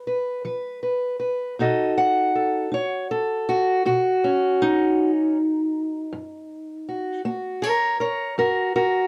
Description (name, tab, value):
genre	acoustic country blues, solo or duo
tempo	53 BPM (dotted quarters)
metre	12/8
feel	straight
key	unclear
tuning	A4 = 441 Hz
part	fingerpicked steel-string acoustic guitar	solo	0.0-9.1 s	F#2 to F#5	-23 LUFS	equal	none
room	light reverb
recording	dry, close 1970s-style studio recording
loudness	-23 LUFS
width	mono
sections	0.0-9.1 A section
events	none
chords	0.0 C#7 (rootless); 1.6 B7; 6.1 F#